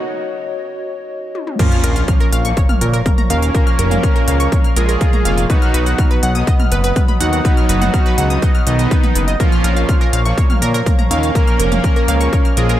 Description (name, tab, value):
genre	melodic techno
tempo	123 BPM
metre	4/4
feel	straight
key	Bb phrygian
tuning	A4 = 441 Hz
part	dark analog pad	sustained chords	0.0-12.8 s	F#4 to D#6	-26 LUFS	left 1 dB	chorus, sidechain pumping
part	techno drum kit	drums	1.4-12.8 s	crash cymbal, hi-hat, toms	-24 LUFS	right 1 dB	none
part	soft supersaw	melody	1.6-12.8 s	B3 to Bb4	-22 LUFS	right 1 dB	cassette tape, tape echo
part	big bright polysynth	second line	1.6-12.8 s	D#3 to Bb3	-27 LUFS	right 1 dB	ensemble chorus, sidechain pumping, tape echo
part	analog pluck	arpeggios	1.6-12.8 s	Bb4 to F6	-23 LUFS	right 2 dB	chorus, sidechain pumping, tape echo
part	analog synth brass	stabs	1.6-12.8 s	Bb2 to B3	-24 LUFS	right 2 dB	chorus, sidechain pumping, tape echo
part	electronic kick drum	drums	1.6-12.4 s	none	-14 LUFS	equal	high-pass filter on kick, high-pass filter on room
part	sub drop	sound effects	1.6-3.5 s	none	-25 LUFS	equal	none
part	fat analog bass	bass	1.8-12.8 s	F1 to Bb2	-16 LUFS	equal	sidechain pumping
room	digital ambience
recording	high-pass filter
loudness	-12 LUFS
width	side -13 dB against mid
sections	0.0-1.6 A section; 1.6-12.8 B section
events	break 0.0-1.6; build-up 0.0-1.6; drum fill 1.4; drop 1.6-12.8; impact 1.6-3.5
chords	0.0 B (rootless); 1.6 Bbm; 5.5 B; 9.4 Bbm